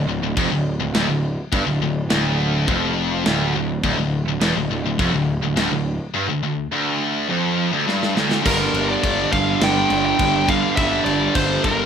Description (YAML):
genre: heavy metal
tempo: 104 BPM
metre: 4/4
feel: straight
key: D minor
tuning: A4 = 437 Hz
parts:
  - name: heavy high-gain guitar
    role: riff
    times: 0.0-11.9 s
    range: D2 to G3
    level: -23 LUFS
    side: left 10 dB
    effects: distortion
  - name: high-gain distorted guitar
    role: riff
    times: 0.0-11.9 s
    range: D2 to G3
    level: -24 LUFS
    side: right 9 dB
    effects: distortion
  - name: thick fuzz guitar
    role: riff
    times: 0.0-11.9 s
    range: D2 to G3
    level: -28 LUFS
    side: equal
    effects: none
  - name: fuzz picked electric bass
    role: bass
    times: 0.0-11.9 s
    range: D1 to G1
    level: -25 LUFS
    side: equal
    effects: overdrive
  - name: tight metal drum kit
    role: drums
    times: 0.4-11.8 s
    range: crash cymbal, kick drum, snare drum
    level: -25 LUFS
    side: equal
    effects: none
  - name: high-gain lead guitar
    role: melody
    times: 8.5-11.9 s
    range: Bb4 to G5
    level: -21 LUFS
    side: equal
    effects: distortion
room: moderate studio reverb, RT60 0.5 s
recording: rough home demo mix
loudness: -17 LUFS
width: side -7 dB against mid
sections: 0.0-8.5 A section; 8.5-11.9 B section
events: drum fill 7.9-8.5; half time 8.5-11.9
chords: 0.0 Dm; 8.5 G5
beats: 0.37 0.95 | 1.52 2.10 2.68 3.26 | 3.84 4.41 4.99 5.57 | 6.15 6.73 7.30 7.88 | 8.46 9.04 9.62 10.19 | 10.77 11.35